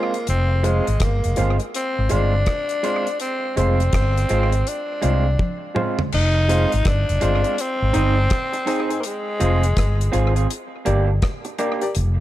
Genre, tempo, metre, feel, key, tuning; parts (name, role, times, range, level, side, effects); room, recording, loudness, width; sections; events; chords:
roots reggae; 82 BPM; 4/4; swing 63% on 16ths; F dorian; A4 = 441 Hz
raspy tenor saxophone; melody; 0.0-10.5 s; Ab3 to Eb4; -24 LUFS; left 1 dB; tape echo
electric guitar through a small old amp; accompaniment; 0.0-11.8 s; Ab3 to Ab4; -26 LUFS; right 5 dB; tape echo
bright reed electric piano; stabs; 0.0-11.9 s; Eb4 to D5; -28 LUFS; left 3 dB; fast tremolo
deep reggae drum kit; drums; 0.1-12.2 s; crash cymbal, hi-hat, kick drum, rim click, toms; -25 LUFS; equal; tape echo
fretless electric bass; bass; 0.3-12.2 s; F1 to C2; -19 LUFS; equal
small room ambience; -18 LUFS; side -14 dB against mid
0.0-6.1 A section; 6.1-12.2 B section
drum fill 5.4-6.1
0.0 Fm; 7.6 Ab; 9.0 Fm; 10.5 Gm